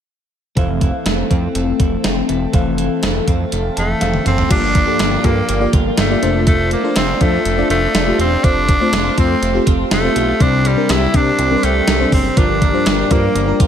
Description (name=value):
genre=1980s-style pop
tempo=122 BPM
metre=4/4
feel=straight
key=F major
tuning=A4 = 441 Hz
part: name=FM electric piano with soft pad layer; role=accompaniment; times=0.6-13.7 s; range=G2 to A5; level=-20 LUFS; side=left 2 dB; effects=chorus, shimmer reverb
part: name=phased analog pad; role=sustained chords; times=0.6-13.7 s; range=E3 to C6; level=-24 LUFS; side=left 2 dB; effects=phaser, chorus, shimmer reverb
part: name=twelve-string electric guitar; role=riff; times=0.6-13.7 s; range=E3 to G4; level=-26 LUFS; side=right 4 dB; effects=lush chorus, shimmer reverb
part: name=fat analog bass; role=bass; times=0.6-13.7 s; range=E1 to C3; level=-20 LUFS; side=equal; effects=none
part: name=gated 80s digital drum machine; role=drums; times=0.6-13.7 s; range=crash cymbal, hi-hat, kick drum, snare drum, toms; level=-17 LUFS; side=equal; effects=gated reverb, gated reverb snare
part: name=raspy tenor saxophone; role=melody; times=3.8-13.6 s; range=G3 to E4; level=-18 LUFS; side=equal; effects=shimmer reverb
room=light reverb, digital ambience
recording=none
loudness=-13 LUFS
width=side -9 dB against mid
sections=0.6-4.5 A section; 4.5-13.7 B section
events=FM electric piano fill 3.5-4.5; drum fill 4.0-4.5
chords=0.6 Fmaj7; 4.5 Gm7; 6.2 Dm7/F; 8.4 F; 10.4 Csus2; 12.4 Gm7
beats=| 0.57 1.06 1.55 2.04 | 2.54 3.03 3.52 4.01 | 4.50 4.99 5.49 5.98 | 6.47 6.96 7.45 7.95 | 8.44 8.93 9.42 9.91 | 10.40 10.89 11.39 11.88 | 12.37 12.86 13.35